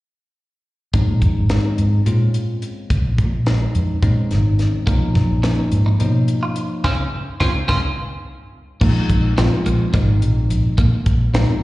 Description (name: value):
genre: electric jazz fusion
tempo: 213 BPM (eighths)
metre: 7/8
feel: straight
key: Bb minor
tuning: A4 = 437 Hz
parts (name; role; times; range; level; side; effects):
- bell-like tine electric piano; accompaniment; 0.9-11.6 s; E#3 to F4; -23 LUFS; left 1 dB; phaser
- vintage muted fingered electric bass; bass; 0.9-11.5 s; Ab1 to B2; -17 LUFS; equal; none
- crisp fusion drum kit; drums; 0.9-11.5 s; crash cymbal, hi-hat, kick drum, snare drum; -22 LUFS; equal; none
- clean electric guitar; stabs; 4.9-11.6 s; A#3 to E#4; -25 LUFS; right 2 dB; lush chorus, slapback echo
room: studio ambience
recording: live gig heard through the venue's PA, recital hall reverb, nothing above 10.6 kHz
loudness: -15 LUFS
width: side -18 dB against mid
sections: 0.9-8.8 A section; 8.8-11.6 B section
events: band accent 6.9-8.8; tine electric piano fill 8.0-8.8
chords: 0.9 Bbm11; 4.9 Bmaj9#11; 6.9 Dbmaj7; 8.8 Bb9sus4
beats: | 0.94 1.22 1.50 1.78 2.06 2.35 2.63 | 2.91 3.19 3.47 3.75 4.04 4.32 4.60 | 4.88 5.16 5.44 5.72 6.01 6.29 6.57 | 6.85 7.13 7.41 7.70 7.98 8.26 8.54 | 8.82 9.10 9.38 9.66 9.94 10.22 10.50 | 10.79 11.06 11.35 11.63